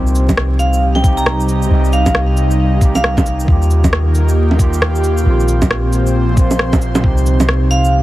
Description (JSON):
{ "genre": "future garage", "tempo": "135 BPM", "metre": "4/4", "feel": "swing 61% on 16ths", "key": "C minor", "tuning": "A4 = 440 Hz", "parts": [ { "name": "overdriven tine electric piano", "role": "accompaniment", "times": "0.0-8.0 s", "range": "Bb2 to G4", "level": "-21 LUFS", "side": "right 2 dB", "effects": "sidechain pumping, analog delay" }, { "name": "airy breathy pad", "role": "sustained chords", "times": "0.0-8.0 s", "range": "Bb2 to C5", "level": "-20 LUFS", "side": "equal", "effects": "chorus, sidechain pumping" }, { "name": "soft 808-style bass", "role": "bass", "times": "0.0-8.0 s", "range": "Bb1 to Eb2", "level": "-15 LUFS", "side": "equal", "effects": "sidechain pumping" }, { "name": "electronic shaker, cabasa, bongos and rim click", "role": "drums", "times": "0.1-7.9 s", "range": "none", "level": "-18 LUFS", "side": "right 1 dB", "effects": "none" }, { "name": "electronic kick drum", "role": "drums", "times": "0.3-7.1 s", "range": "none", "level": "-14 LUFS", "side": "equal", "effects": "none" }, { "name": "vibraphone with hard mallets", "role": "melody", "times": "0.6-3.3, 7.7-7.9 s", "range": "F5 to Bb5", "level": "-20 LUFS", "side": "right 1 dB", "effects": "tape echo" } ], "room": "little or no reverb", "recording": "heavily compressed radio sound, vinyl crackle", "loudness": "-11 LUFS", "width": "side -16 dB against mid", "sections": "0.0-7.0 A section", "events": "none", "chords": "0.0 Cm; 3.5 Ebadd9; 5.3 Bbsus2; 7.0 Cm" }